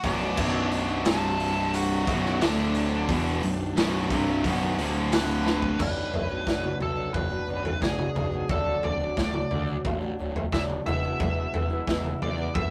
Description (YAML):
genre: quiet-loud alternative rock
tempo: 89 BPM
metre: 4/4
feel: straight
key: unclear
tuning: A4 = 440 Hz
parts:
  - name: nasal lead guitar with a parked wah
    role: melody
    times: 0.0-12.7 s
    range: D4 to A5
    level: -35 LUFS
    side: equal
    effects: overdrive
  - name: distorted electric guitar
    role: riff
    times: 0.0-5.8 s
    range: B1 to E3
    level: -34 LUFS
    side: equal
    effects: overdrive
  - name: fuzz guitar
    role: riff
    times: 0.0-5.8 s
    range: B1 to E3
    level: -31 LUFS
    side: equal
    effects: distortion
  - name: scooped high-gain guitar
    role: riff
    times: 0.0-5.8 s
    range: B1 to E3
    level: -37 LUFS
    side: equal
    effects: distortion
  - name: fuzz picked electric bass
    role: bass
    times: 0.0-12.7 s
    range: B0 to E2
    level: -34 LUFS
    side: equal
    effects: overdrive
  - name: raw garage drum kit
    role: drums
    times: 0.0-12.7 s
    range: crash cymbal, hi-hat, kick drum, snare drum, toms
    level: -32 LUFS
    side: equal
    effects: none
  - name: fingerpicked acoustic archtop guitar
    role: arpeggios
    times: 5.8-12.7 s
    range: D2 to E4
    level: -35 LUFS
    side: equal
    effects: analog delay
room: moderate small room reverb, RT60 0.5 s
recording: rough rehearsal-room recording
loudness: -27 LUFS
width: mono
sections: 0.0-5.8 A section; 5.8-12.7 B section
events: drum fill 5.5-5.8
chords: 0.0 Bm; 1.1 C5; 2.1 B5; 2.4 D5; 3.1 Bm; 4.8 D5; 5.8 Bm; 8.5 D; 10.9 E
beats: | 0.39 1.06 1.74 2.41 | 3.09 3.76 4.44 5.11 | 5.79 6.47 7.14 7.82 | 8.49 9.17 9.85 10.52 | 11.20 11.88 12.55